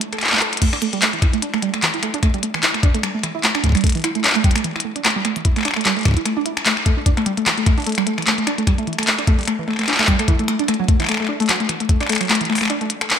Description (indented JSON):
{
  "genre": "IDM",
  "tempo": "149 BPM",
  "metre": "4/4",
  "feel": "swing 56% on 16ths",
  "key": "unclear",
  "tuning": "A4 = 439 Hz",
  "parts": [
    { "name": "glitchy drum kit", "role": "drums", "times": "0.0-13.2 s", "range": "crash cymbal, finger snaps, handclaps, hi-hat", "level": "-19 LUFS", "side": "left 2 dB", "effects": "gated reverb" },
    { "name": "warbly dusty pluck", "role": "arpeggios", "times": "0.1-13.1 s", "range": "E3 to A4", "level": "-21 LUFS", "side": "right 2 dB", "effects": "wide subtle chorus, vintage 12-bit sampler grit, ping-pong delay" },
    { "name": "electronic kick drum", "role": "drums", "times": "0.6-12.0 s", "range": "none", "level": "-16 LUFS", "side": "equal", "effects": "none" }
  ],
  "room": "light reverb",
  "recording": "bright 1980s-style digital production",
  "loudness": "-16 LUFS",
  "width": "side -8 dB against mid",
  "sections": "0.6-13.2 A section",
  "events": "break 0.0-0.6; drum fill 0.4",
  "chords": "none"
}